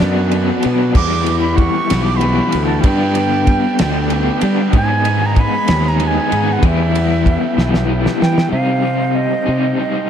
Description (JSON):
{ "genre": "psychedelic rock", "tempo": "63 BPM (dotted quarters)", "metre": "6/8", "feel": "straight", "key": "unclear", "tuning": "A4 = 440 Hz", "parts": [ { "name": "breathy bright concert flute", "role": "melody", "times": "0.0-10.1 s", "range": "D5 to D6", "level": "-21 LUFS", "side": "right 4 dB", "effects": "analog delay" }, { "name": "combo organ", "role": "sustained chords", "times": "0.0-10.1 s", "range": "D4 to G#5", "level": "-28 LUFS", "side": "right 5 dB", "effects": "none" }, { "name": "crunchy overdriven guitar", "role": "riff", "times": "0.0-10.1 s", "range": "G2 to E4", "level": "-18 LUFS", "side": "left 2 dB", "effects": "tremolo, analog delay" }, { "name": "fuzz fingered electric bass", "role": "bass", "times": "0.0-9.7 s", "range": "B1 to G3", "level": "-17 LUFS", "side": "equal", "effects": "overdrive" }, { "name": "damped 70s drum kit", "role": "drums", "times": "0.0-8.5 s", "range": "crash cymbal, kick drum, ride cymbal, snare drum", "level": "-19 LUFS", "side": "equal", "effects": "none" } ], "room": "light reverb, studio reverb", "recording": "echo-heavy mix", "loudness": "-13 LUFS", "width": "side -8 dB against mid", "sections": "0.0-8.5 A section; 8.5-10.1 B section", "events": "drum fill 7.6-8.5", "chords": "0.0 Bm; 1.0 Emadd9; 2.8 G; 4.7 G#m; 6.6 Em; 8.5 Cm" }